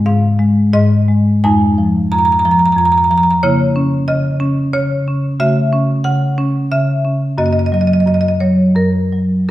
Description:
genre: classical, contemporary piece for solo marimba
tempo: 80-93 BPM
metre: 3/4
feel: rubato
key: unclear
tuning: A4 = 439 Hz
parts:
  - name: marimba with medium hard mallets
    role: solo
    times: 0.0-9.5 s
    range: F2 to A#5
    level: -12 LUFS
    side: equal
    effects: none
room: wet recital hall reverb, RT60 1.4 s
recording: heard from further back in the room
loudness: -12 LUFS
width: side -15 dB against mid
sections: 0.0-9.5 A section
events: none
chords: 0.0 G#6; 1.4 Fm7; 3.4 C#m6; 5.4 A6/C#; 7.4 F#6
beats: 0.05 0.73 | 1.44 2.11 2.77 | 3.42 4.08 4.74 | 5.40 6.04 6.71 | 7.38 8.06 8.76 | 9.49

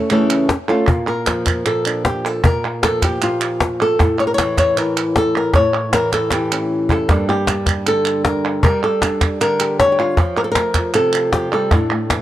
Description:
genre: flamenco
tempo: 155 BPM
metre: 4/4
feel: straight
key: unclear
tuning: A4 = 442 Hz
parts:
  - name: flamenco guitar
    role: melody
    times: 0.0-12.2 s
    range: G2 to C#5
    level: -16 LUFS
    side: equal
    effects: none
  - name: cajon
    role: percussion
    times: 0.1-12.2 s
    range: none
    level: -17 LUFS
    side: left 1 dB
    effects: none
  - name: palmas hand claps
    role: percussion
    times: 0.1-12.2 s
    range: none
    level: -23 LUFS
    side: right 7 dB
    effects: none
room: light reverb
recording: dry, close 1970s-style studio recording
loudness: -14 LUFS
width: side -13 dB against mid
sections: 0.9-12.2 A section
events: drum fill 6.1-7.1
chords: 0.0 A; 0.9 Bb5; 4.0 A; 7.1 Gm; 10.2 Fadd9; 11.7 Asus4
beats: 0.10 0.49 | 0.88 1.27 1.66 2.05 | 2.44 2.83 3.22 3.61 | 4.00 4.39 4.77 5.16 | 5.55 5.94 6.32 6.71 | 7.10 7.48 7.87 8.25 | 8.64 9.02 9.41 9.79 | 10.18 10.56 10.95 11.33 | 11.72 12.10

